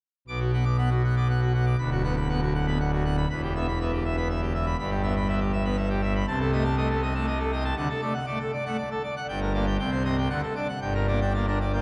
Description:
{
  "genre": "classical, organ toccata",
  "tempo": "120 BPM",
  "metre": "3/4",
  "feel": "straight",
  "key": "B minor, G minor from 6.3 s",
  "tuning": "A4 = 440 Hz",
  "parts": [
    { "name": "pipe organ, full organ", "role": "solo", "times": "0.3-11.8 s", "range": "D1 to D6", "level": "-26 LUFS", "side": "equal", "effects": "none" }
  ],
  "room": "wet cathedral reverb, RT60 6.5 s",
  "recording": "in a vast, echoing space",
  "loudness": "-26 LUFS",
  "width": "mono",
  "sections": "0.3-11.8 A section",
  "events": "none",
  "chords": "0.3 Bm; 1.8 Bm/D; 3.3 Em; 4.8 Em/G; 6.3 Adim/C; 7.8 D; 9.3 Gm; 9.8 Cm; 10.3 D; 10.8 Gm",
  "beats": "| 0.28 0.78 1.29 | 1.79 2.29 2.80 | 3.30 3.80 4.29 | 4.79 5.29 5.78 | 6.28 6.78 7.27 | 7.77 8.28 8.78 | 9.28 9.79 10.30 | 10.82 11.34"
}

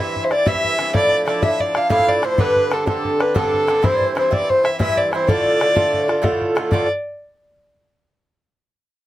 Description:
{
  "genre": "celtic folk, Celtic slip jig",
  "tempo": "125 BPM (dotted quarters)",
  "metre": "9/8",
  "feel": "straight",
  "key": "D dorian",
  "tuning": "A4 = 440 Hz",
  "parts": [
    { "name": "dark fiddle", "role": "melody", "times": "0.0-6.9 s", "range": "A4 to F5", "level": "-18 LUFS", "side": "equal", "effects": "none" },
    { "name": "bright baroque flute", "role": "second line", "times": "0.0-6.9 s", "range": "A4 to F5", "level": "-25 LUFS", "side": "left 4 dB", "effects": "none" },
    { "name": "Irish bouzouki", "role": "accompaniment", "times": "0.0-6.9 s", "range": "G2 to F4", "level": "-22 LUFS", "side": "right 2 dB", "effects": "none" },
    { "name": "bodhran", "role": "percussion", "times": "0.2-6.9 s", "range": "none", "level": "-22 LUFS", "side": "left 1 dB", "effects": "none" }
  ],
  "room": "moderate booth ambience, RT60 0.3 s",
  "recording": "none",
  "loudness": "-15 LUFS",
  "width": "side -14 dB against mid",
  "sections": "0.0-6.7 A section; 6.7-8.2 B section",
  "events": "none",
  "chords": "0.0 C; 0.9 Dmadd9; 2.4 Gsus4; 3.8 C; 5.3 Dm",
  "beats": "0.46 | 0.94 1.43 1.91 | 2.39 2.87 3.35 | 3.84 4.32 4.80 | 5.28 5.76 6.24 | 6.72"
}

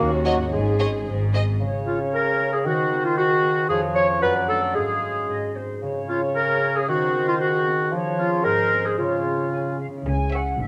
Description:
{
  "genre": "cinematic, playful, whimsical film cue",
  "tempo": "113 BPM",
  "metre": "2/4",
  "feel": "straight",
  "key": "Db major",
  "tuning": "A4 = 436 Hz",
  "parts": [
    { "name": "rich studio viola section", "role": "accompaniment", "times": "0.0-1.3, 10.3-10.5 s", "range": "Gb4 to Ab4", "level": "-34 LUFS", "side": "equal", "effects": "none" },
    { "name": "warm bassoon", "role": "accompaniment", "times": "0.0-9.8 s", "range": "Db3 to Bb3", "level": "-29 LUFS", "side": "equal", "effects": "none" },
    { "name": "mellow French horn section", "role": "sustained chords", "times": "0.0-1.3 s", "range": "Eb4 to Db5", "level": "-33 LUFS", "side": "equal", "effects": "none" },
    { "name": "concert harp", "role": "arpeggios", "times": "0.0-10.7 s", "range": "F2 to Bb4", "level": "-31 LUFS", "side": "equal", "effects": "none" },
    { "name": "clear chamber cello section", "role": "bass", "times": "0.0-1.5, 10.1-10.7 s", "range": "Eb2 to C#3", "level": "-29 LUFS", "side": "equal", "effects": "none" },
    { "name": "clear chamber double bass section", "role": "bass", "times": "0.0-1.5, 10.1-10.7 s", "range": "Ab1 to Eb2", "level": "-28 LUFS", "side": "equal", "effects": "none" },
    { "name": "clear chamber violin section", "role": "melody", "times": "0.3-1.4, 10.3-10.5 s", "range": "Eb5 to E5", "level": "-34 LUFS", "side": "equal", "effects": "none" },
    { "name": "rich chamber violin section", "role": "second line", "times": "0.3-1.4, 10.3-10.5 s", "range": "Gb4 to Db5", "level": "-35 LUFS", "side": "equal", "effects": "none" },
    { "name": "flute section", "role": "second line", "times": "1.6-10.7 s", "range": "C5 to Ab5", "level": "-34 LUFS", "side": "equal", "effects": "none" },
    { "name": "clear clarinet", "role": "second line", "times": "1.9-9.8 s", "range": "F4 to Db5", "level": "-25 LUFS", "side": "equal", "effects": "none" },
    { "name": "warm oboe", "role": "second line", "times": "1.9-9.8 s", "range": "F4 to Db5", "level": "-29 LUFS", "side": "equal", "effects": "none" }
  ],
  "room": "moderate scoring stage reverb, RT60 1.6 s",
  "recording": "close, detailed microphones",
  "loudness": "-22 LUFS",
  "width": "mono",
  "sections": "0.0-1.6 A section; 1.6-10.1 B section",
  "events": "none",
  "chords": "0.0 Ebm7; 0.5 Absus4; 1.1 Ab; 1.6 Db5; 2.7 Ab7/Eb; 3.7 Db/F; 4.2 D/F#; 4.8 Db/Ab; 5.3 Ab; 5.8 Db5; 6.9 Ab7/Eb; 7.9 Db/F; 8.5 Ab; 9.0 Db; 10.1 C#m",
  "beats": "| 0.52 1.07 | 1.61 2.13 | 2.66 3.17 | 3.69 4.22 | 4.75 5.29 | 5.82 6.36 | 6.88 7.40 | 7.93 8.45 | 8.99 9.53 | 10.06 10.60"
}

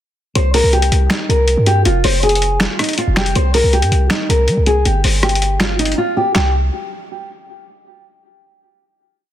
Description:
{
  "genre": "hip hop, trap",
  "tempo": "160 BPM",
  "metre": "4/4",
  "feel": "half-time",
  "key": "C minor",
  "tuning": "A4 = 441 Hz",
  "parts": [
    { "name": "nylon-string guitar", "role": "melody", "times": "0.4-6.5 s", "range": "Eb4 to C5", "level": "-17 LUFS", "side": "left 1 dB", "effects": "ping-pong delay" },
    { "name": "hard-hitting 808-style bass", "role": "bass", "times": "0.4-6.7 s", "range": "F1 to G3", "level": "-15 LUFS", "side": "equal", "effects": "none" },
    { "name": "dusty soul sampler-style drum kit", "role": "drums", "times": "0.4-6.4 s", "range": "finger snaps, handclaps, hi-hat, rim click, snare drum", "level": "-19 LUFS", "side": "left 1 dB", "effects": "none" }
  ],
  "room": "digital ambience",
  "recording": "dense, heavily limited modern master",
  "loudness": "-12 LUFS",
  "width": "side -12 dB against mid",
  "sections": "0.4-6.4 hook; 6.4-7.9 final chord",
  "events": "drums muted 6.0-6.4",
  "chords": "0.4 C5; 1.9 Fm; 3.4 C5; 4.9 G7(no3); 6.4 C5",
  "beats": "| 0.35 0.73 1.10 1.48 | 1.85 2.23 2.60 2.98 | 3.35 3.73 4.11 4.48 | 4.86 5.23 5.61 5.98 | 6.36"
}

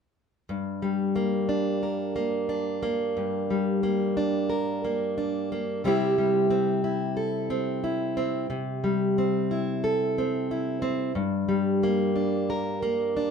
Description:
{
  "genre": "folk",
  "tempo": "90 BPM",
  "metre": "4/4",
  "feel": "straight",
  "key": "G dorian",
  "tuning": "A4 = 440 Hz",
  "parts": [
    { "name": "fingerpicked plugged-in steel-string acoustic guitar", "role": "accompaniment", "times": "0.5-13.3 s", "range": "G2 to Bb4", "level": "-24 LUFS", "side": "equal", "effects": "none" }
  ],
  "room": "moderate studio reverb, RT60 0.6 s",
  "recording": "band playing live in one room",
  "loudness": "-24 LUFS",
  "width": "side -6 dB against mid",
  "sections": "0.5-13.3 A section",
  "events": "none",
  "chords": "0.5 Gm; 5.8 C; 11.2 Gm",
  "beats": "| 0.49 1.16 1.83 2.50 | 3.17 3.83 4.50 5.17 | 5.83 6.50 7.17 7.83 | 8.50 9.16 9.83 10.50 | 11.16 11.83 12.49 13.16"
}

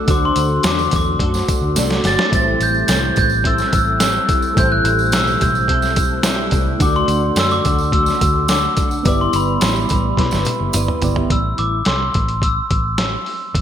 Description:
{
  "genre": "indie pop, bedroom pop",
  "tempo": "107 BPM",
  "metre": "4/4",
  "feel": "straight",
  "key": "A dorian",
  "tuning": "A4 = 441 Hz",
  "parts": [
    { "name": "soft electric-piano-like synth keys", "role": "accompaniment", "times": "0.0-11.3 s", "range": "A3 to D5", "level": "-25 LUFS", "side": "right 3 dB", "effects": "chorus, phaser, cassette tape" },
    { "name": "twelve-string electric guitar", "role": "accompaniment", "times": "0.0-11.8 s", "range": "A2 to D5", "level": "-23 LUFS", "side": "left 3 dB", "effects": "ensemble chorus, vibrato effect" },
    { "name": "glockenspiel with soft plastic mallets", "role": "melody", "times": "0.1-13.0 s", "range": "B5 to A6", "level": "-19 LUFS", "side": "equal", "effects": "lush chorus, digital delay" },
    { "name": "vintage muted fingered electric bass", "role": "bass", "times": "0.1-13.6 s", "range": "F#1 to F#2", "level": "-21 LUFS", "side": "equal", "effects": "none" },
    { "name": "lo-fi sampler-style drum kit", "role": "drums", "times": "0.1-13.6 s", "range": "hi-hat, kick drum, snare drum, toms", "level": "-19 LUFS", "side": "equal", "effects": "overdrive, gated reverb" },
    { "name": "tambourine", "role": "percussion", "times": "0.1-11.1 s", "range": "none", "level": "-30 LUFS", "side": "right 8 dB", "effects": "none" }
  ],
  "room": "moderate plate reverb, RT60 2.1 s",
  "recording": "bright 1980s-style digital production",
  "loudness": "-14 LUFS",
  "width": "side -9 dB against mid",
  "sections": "0.0-11.3 A section; 11.3-13.6 B section",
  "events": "drum fill 1.8-2.3, 10.2-11.3",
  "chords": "0.0 D; 2.3 Am7; 6.8 D; 9.1 G6; 11.3 Am7",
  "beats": "| 0.08 0.64 1.20 1.76 | 2.32 2.88 3.45 4.01 | 4.57 5.13 5.69 6.25 | 6.81 7.37 7.93 8.49 | 9.05 9.62 10.18 10.74 | 11.30 11.86 12.42 12.98 | 13.54"
}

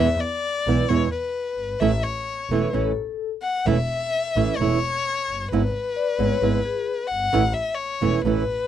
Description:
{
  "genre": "tango",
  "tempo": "131 BPM",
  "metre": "4/4",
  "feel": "rubato",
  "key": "unclear",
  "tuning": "A4 = 438 Hz",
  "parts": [
    { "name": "warm violin", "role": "second line", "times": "0.0-8.7 s", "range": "B4 to F#5", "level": "-25 LUFS", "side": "left 4 dB", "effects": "none" },
    { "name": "flamenco guitar", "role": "accompaniment", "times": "0.0-8.4 s", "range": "B2 to E4", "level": "-21 LUFS", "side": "right 7 dB", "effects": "none" },
    { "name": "clear double bass", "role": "bass", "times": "0.0-8.4 s", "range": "E1 to E2", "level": "-26 LUFS", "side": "equal", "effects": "none" },
    { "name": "vibraphone with medium mallets", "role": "second line", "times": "2.5-7.0 s", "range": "G#4 to D5", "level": "-27 LUFS", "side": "left 9 dB", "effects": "none" }
  ],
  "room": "light reverb",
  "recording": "dry, close 1970s-style studio recording",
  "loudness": "-21 LUFS",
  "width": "side -10 dB against mid",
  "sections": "0.0-8.7 A section",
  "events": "violin solo 0.0-8.7",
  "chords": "0.0 E; 1.8 A; 5.5 E/G#; 7.3 A",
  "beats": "0.44 0.90 1.35 | 1.81 2.27 2.74 3.20 | 3.67 4.13 4.59 5.05 | 5.51 5.97 6.42 6.88 | 7.33 7.79 8.24"
}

